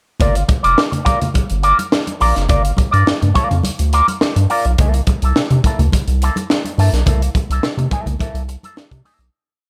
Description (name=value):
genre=funk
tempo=105 BPM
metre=4/4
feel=straight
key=G dorian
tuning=A4 = 439 Hz
part: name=electric guitar with an envelope filter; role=accompaniment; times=0.2-9.3 s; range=Bb3 to D5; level=-20 LUFS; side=equal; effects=wah
part: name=round analog bass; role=bass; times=0.2-9.3 s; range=F1 to C3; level=-18 LUFS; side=equal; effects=none
part: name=crisp fusion drum kit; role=drums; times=0.2-9.3 s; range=hi-hat, kick drum, snare drum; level=-20 LUFS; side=equal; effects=none
part: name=congas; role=percussion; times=0.2-9.2 s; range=none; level=-26 LUFS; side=equal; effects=none
room=light reverb, small room ambience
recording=none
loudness=-16 LUFS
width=mono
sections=0.2-9.3 groove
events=fade-out 7.1-9.3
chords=0.2 Gm7; 4.8 C13